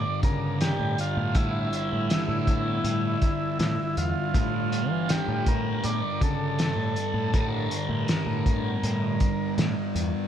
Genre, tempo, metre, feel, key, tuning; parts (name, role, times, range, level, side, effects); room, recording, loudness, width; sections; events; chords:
psychedelic rock; 80 BPM; 4/4; straight; A4 = 445 Hz
combo organ; melody; 0.0-9.5 s; E4 to D5; -31 LUFS; right 1 dB; analog delay
thick fuzz guitar; riff; 0.0-10.3 s; G2 to G3; -29 LUFS; equal; distortion, phaser
growling picked electric bass; bass; 0.0-10.1 s; E2 to E3; -29 LUFS; equal; overdrive
cloth-damped thuddy drum kit; drums; 0.2-10.1 s; hi-hat, kick drum, snare drum; -27 LUFS; equal
moderate plate reverb, RT60 3.0 s; dreamy mix soaked in reverb; -24 LUFS; side -9 dB against mid
0.0-10.3 A section
0.0 Gm